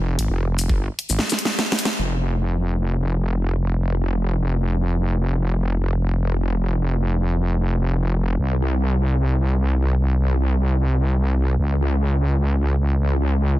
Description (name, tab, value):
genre	heavy wobble dubstep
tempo	free time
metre	none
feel	none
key	unclear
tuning	A4 = 440 Hz
part	wobble bass	bass	0.0-13.6 s	F1 to Db2	-19 LUFS	equal	chorus, overdrive
part	dubstep drum kit	drums	0.2-1.9 s	hi-hat, shaker, snare drum	-22 LUFS	equal	studio reverb
part	electronic kick drum	drums	0.7-0.8 s	none	-20 LUFS	equal	studio reverb
room	digital ambience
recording	dense, heavily limited modern master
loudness	-19 LUFS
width	side -16 dB against mid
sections	0.0-2.0 A section; 2.0-13.6 B section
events	drop 0.0-2.0; drum fill 1.2-2.0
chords	none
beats	free time